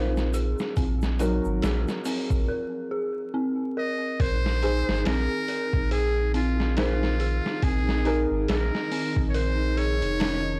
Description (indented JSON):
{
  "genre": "trip hop",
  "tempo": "70 BPM",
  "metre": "4/4",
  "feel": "swing 58% on 16ths",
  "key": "Bb minor",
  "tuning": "A4 = 440 Hz",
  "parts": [
    { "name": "dark upright piano", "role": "accompaniment", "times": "0.0-10.2 s", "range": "Gb3 to C5", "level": "-34 LUFS", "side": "equal", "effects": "harmonic tremolo, tape echo" },
    { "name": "dark detuned synth bell", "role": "arpeggios", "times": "0.0-10.6 s", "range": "C4 to Bb4", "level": "-32 LUFS", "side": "equal", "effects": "chorus, tape echo" },
    { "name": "soft dub sub bass", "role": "bass", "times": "0.0-10.6 s", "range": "F1 to Bb1", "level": "-29 LUFS", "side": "equal", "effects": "none" },
    { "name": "bowed-like drone", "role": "texture", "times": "0.2-2.5 s", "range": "F3 to F4", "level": "-49 LUFS", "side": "equal", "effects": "none" },
    { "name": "trip hop sampler-style drum kit", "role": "drums", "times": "0.2-10.4 s", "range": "hi-hat, kick drum, snare drum", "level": "-32 LUFS", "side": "equal", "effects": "none" },
    { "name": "egg shaker", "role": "percussion", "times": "0.2-2.4 s", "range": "none", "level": "-50 LUFS", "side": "equal", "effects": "none" },
    { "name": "trumpet with metal mute", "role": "melody", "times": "3.8-10.6 s", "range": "F4 to Eb5", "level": "-33 LUFS", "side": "equal", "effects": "none" },
    { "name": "string machine, cellos", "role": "sustained chords", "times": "4.2-10.6 s", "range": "Eb4", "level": "-36 LUFS", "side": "equal", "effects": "ensemble chorus" }
  ],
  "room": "little or no reverb",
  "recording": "dry, gritty hardware recording, vinyl crackle",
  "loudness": "-26 LUFS",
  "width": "mono",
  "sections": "0.0-4.2 A section; 4.2-10.6 B section",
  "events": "filter sweep on synth bell 0.0-4.2; break 2.5-4.2",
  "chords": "0.0 Ab69; 0.8 Gb6; 4.2 Bb9sus4"
}